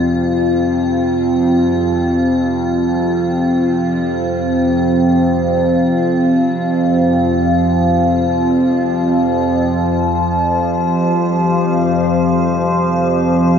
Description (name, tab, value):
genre	dark ambient drone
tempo	free time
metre	none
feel	none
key	unclear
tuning	A4 = 436 Hz
part	dark analog pad	sustained chords	0.0-13.6 s	F3 to F5	-16 LUFS	equal	chorus
part	overtone-sweeping drone	drone	0.0-13.6 s	F2 to F3	-16 LUFS	equal	chorus, built-in reverb, phaser
part	icy glass pad	texture	0.0-13.6 s	F4 to C5	-23 LUFS	equal	chorus, built-in reverb
room	wet huge ambient reverb, RT60 8.1 s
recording	nothing above 7.5 kHz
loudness	-13 LUFS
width	side -7 dB against mid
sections	0.0-13.6 A section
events	none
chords	0.0 Fsus2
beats	free time